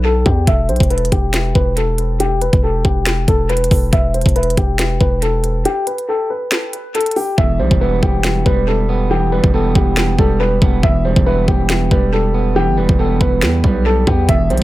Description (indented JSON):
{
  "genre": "hip hop, trap",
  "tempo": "139 BPM",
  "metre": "4/4",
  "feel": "half-time",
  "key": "E minor",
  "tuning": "A4 = 441 Hz",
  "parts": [
    { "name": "dark grand piano", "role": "melody", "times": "0.0-14.6 s", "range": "G4 to E5", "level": "-18 LUFS", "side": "left 1 dB", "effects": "low-pass filter, dub echo" },
    { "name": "distorted 808-style bass", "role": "bass", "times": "0.0-14.6 s", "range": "E1 to E2", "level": "-17 LUFS", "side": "equal", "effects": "distortion" },
    { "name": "trap drum kit", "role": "drums", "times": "0.3-14.6 s", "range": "finger snaps, hi-hat, kick drum, snare drum", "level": "-17 LUFS", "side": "equal", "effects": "dub echo" },
    { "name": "electric guitar at the edge of break-up", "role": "accompaniment", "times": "7.4-14.6 s", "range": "E2 to B3", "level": "-19 LUFS", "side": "right 5 dB", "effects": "low-pass filter" }
  ],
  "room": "little or no reverb",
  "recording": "echo-heavy mix",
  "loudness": "-13 LUFS",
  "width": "side -17 dB against mid",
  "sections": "0.0-14.6 A section",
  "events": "break 0.0-0.5, 5.7-7.4; filter sweep 0.0-7.4; hi-hats muted 7.4-14.3",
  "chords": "0.0 Em"
}